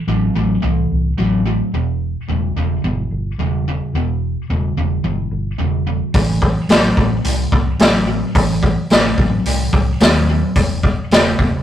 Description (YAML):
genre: blues rock power trio and southern rock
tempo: 109 BPM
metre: 4/4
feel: straight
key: E minor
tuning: A4 = 440 Hz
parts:
  - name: overdriven electric guitar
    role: riff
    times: 0.0-11.6 s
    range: E2 to F#3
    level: -20 LUFS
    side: right 1 dB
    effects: none
  - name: vintage muted fingered electric bass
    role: bass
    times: 0.1-11.6 s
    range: E1 to D#2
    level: -20 LUFS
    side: equal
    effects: none
  - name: vintage drum kit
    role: drums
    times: 6.1-11.5 s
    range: hi-hat, kick drum, snare drum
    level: -14 LUFS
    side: equal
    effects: none
room: moderate small room reverb, RT60 0.6 s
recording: rough rehearsal-room recording, tube saturation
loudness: -14 LUFS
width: side -11 dB against mid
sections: 0.0-11.6 A section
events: none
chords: 0.0 Am; 1.7 Em; 6.1 Am; 10.6 E5